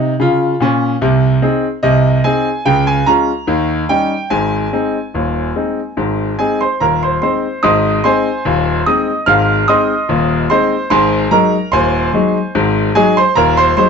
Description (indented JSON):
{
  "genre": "ragtime piano",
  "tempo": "73 BPM",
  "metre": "2/4",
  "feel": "straight",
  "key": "Ab major",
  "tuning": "A4 = 441 Hz",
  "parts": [
    { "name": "bright concert grand piano", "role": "solo", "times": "0.0-13.9 s", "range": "Eb1 to F6", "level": "-12 LUFS", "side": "equal", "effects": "none" }
  ],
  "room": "moderate studio reverb, RT60 0.7 s",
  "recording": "dark, warm production, nothing above 7.9 kHz",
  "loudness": "-12 LUFS",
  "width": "side -6 dB against mid",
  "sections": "0.0-7.6 A section; 7.6-13.9 B section",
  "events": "none",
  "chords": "0.0 Eb7(no3); 1.0 Ab/C; 2.7 Db; 3.5 Eb7; 4.3 Ab; 10.9 Ab7",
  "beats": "0.20 | 1.02 1.84 | 2.66 3.48 | 4.31 5.14 | 5.97 6.80 | 7.63 8.45 | 9.27 10.09 | 10.91 11.73 | 12.54 13.36"
}